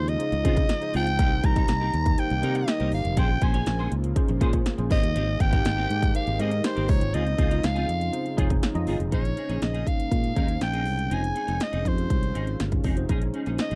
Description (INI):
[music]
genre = polished 1980s jazz-funk pop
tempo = 121 BPM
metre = 4/4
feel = straight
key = Bb dorian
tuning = A4 = 439 Hz
[part]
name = raspy soprano saxophone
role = melody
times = 0.0-13.8 s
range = C5 to Bb5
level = -32 LUFS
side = equal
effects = slapback echo
[part]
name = mellow tine electric piano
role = accompaniment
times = 0.0-13.8 s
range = Db4 to Ab5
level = -35 LUFS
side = equal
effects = analog chorus
[part]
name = lush unison pad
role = sustained chords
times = 0.0-13.8 s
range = Db3 to G4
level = -38 LUFS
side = equal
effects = none
[part]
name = fretless electric bass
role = bass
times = 0.0-13.8 s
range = F1 to Db3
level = -29 LUFS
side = equal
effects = none
[part]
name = semi-hollow electric guitar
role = riff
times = 0.1-13.8 s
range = Bb3 to Db5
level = -38 LUFS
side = equal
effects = ensemble chorus
[part]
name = big-room dance drum kit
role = drums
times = 0.1-13.8 s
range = hi-hat, kick drum, snare drum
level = -27 LUFS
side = equal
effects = none
[sound]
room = little or no reverb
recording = dry, close 1970s-style studio recording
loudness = -25 LUFS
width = mono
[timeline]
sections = 0.0-9.1 A section; 9.1-13.8 B section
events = tine electric piano fill 8.1-9.1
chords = 0.0 Dbmaj7; 1.2 Cm7; 3.2 Bbm9; 4.9 Abmaj9; 6.9 Dbmaj7; 9.1 Bbm11; 11.1 Fm7; 13.1 Bbm11